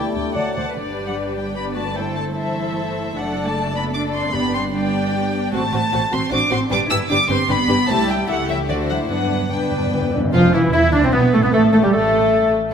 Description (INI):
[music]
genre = quick classical-period movement for symphony orchestra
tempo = 150 BPM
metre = 3/4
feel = straight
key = G major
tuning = A4 = 440 Hz
[part]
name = warm chamber violin section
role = melody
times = 0.0-12.5 s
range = E4 to E6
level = -24 LUFS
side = left 2 dB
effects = none
[part]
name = bright clarinet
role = second line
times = 0.0-0.8, 10.3-12.5 s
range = E3 to D5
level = -26 LUFS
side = left 1 dB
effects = none
[part]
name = mellow hollow silver concert flute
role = second line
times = 0.0-0.5, 10.3-12.5 s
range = C4 to D5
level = -26 LUFS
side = equal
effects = none
[part]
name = warm chamber violin section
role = second line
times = 0.0-12.5 s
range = G3 to G5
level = -25 LUFS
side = left 5 dB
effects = none
[part]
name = dark symphonic viola section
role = accompaniment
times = 0.0-12.5 s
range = E3 to D5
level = -25 LUFS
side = equal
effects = none
[part]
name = mellow bassoon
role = accompaniment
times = 0.0-0.6, 10.3-12.5 s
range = E3 to E4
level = -24 LUFS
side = equal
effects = none
[part]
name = mellow French horn section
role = sustained chords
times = 0.0-0.6, 10.4-12.5 s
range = E3 to E4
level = -25 LUFS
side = left 3 dB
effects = none
[part]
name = dark chamber double bass section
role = bass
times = 0.0-12.5 s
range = E1 to G2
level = -25 LUFS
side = right 3 dB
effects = none
[part]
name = dark chamber cello section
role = bass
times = 0.1-12.5 s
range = D2 to E4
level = -23 LUFS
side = right 3 dB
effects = none
[part]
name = timpani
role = percussion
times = 4.3-4.9, 9.1-10.3 s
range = G2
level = -26 LUFS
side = left 1 dB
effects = none
[part]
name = warm oboe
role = second line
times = 10.3-12.5 s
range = B3 to A4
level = -24 LUFS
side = right 1 dB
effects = none
[sound]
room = wet concert hall reverb, RT60 1.9 s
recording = none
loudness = -16 LUFS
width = side -7 dB against mid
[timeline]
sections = 0.8-10.3 A section; 10.3-12.7 B section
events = timpani fill 9.1-10.3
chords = 0.4 D; 0.8 G; 2.0 Am7/G; 3.2 D/F#; 4.3 G; 5.5 F#dim/A; 6.7 G; 7.9 C; 8.3 A7/C#; 8.7 D7; 9.1 G; 10.3 Am; 11.5 Gsus2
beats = 0.35 | 0.76 1.16 1.56 | 1.96 2.36 2.76 | 3.16 3.56 3.95 | 4.35 4.74 5.14 | 5.53 5.92 6.32 | 6.71 7.10 7.49 | 7.89 8.29 8.69 | 9.10 9.52 9.93 | 10.34 10.74 11.14 | 11.54 11.93 12.33